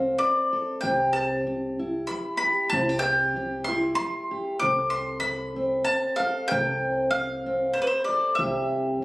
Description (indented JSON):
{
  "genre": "acoustic folk duo or small band",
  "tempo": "95 BPM",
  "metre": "3/4",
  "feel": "straight",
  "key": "C major",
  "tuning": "A4 = 444 Hz",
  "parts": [
    { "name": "mandolin", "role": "melody", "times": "0.0-9.0 s", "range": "B4 to D6", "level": "-25 LUFS", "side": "equal", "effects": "none" },
    { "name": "fingerpicked steel-string acoustic guitar", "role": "accompaniment", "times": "0.0-9.0 s", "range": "C3 to A4", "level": "-27 LUFS", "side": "equal", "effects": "none" },
    { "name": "upright bass", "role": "bass", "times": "0.0-9.0 s", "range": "C2", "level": "-37 LUFS", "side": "equal", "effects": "none" }
  ],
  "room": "moderate large studio reverb, RT60 1.1 s",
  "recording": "recorded on a phone in the room, club reverb, compression",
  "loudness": "-23 LUFS",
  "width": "side -19 dB against mid",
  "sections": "0.0-9.0 A section",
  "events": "none",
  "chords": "0.0 Dm7/C; 0.8 C; 4.6 F/C; 8.4 C"
}